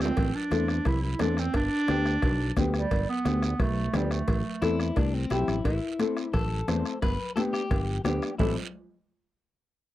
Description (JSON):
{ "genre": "latin, cumbia", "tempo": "175 BPM", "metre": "4/4", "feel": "straight", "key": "A minor", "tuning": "A4 = 440 Hz", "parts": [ { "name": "warm clarinet", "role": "melody", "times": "0.0-4.6 s", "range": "G3 to E4", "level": "-29 LUFS", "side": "right 2 dB", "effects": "none" }, { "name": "nylon-string guitar", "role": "accompaniment", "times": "0.0-8.6 s", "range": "B3 to C5", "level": "-30 LUFS", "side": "left 2 dB", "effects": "none" }, { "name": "fingered electric bass", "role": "bass", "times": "0.0-8.6 s", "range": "G1 to E2", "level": "-29 LUFS", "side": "equal", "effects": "none" }, { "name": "bombo", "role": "percussion", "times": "0.0-8.5 s", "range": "none", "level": "-31 LUFS", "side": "equal", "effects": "none" }, { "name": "guiro", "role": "percussion", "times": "0.0-8.5 s", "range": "none", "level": "-44 LUFS", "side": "right 7 dB", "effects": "none" }, { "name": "timbales and cowbell", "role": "percussion", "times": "0.1-8.5 s", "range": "none", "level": "-38 LUFS", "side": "right 4 dB", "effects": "none" }, { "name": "congas", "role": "percussion", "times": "0.2-8.5 s", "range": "none", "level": "-35 LUFS", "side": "left 5 dB", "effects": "none" }, { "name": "electric guitar at the edge of break-up", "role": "second line", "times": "4.6-8.5 s", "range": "C4 to B4", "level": "-33 LUFS", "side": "left 3 dB", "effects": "none" } ], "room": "light reverb", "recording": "dry, close 1970s-style studio recording", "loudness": "-25 LUFS", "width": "side -14 dB against mid", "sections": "0.0-5.7 A section; 5.7-8.4 B section; 8.4-9.8 C section", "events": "drum fill 0.0, 5.0-5.7", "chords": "0.2 Am; 1.5 G; 4.3 Am; 7.0 G; 8.4 Am", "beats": "| 0.17 0.51 0.86 1.20 | 1.54 1.89 2.23 2.57 | 2.91 3.26 3.60 3.94 | 4.28 4.63 4.97 5.31 | 5.66 6.00 6.34 6.68 | 7.03 7.37 7.71 8.05 | 8.39" }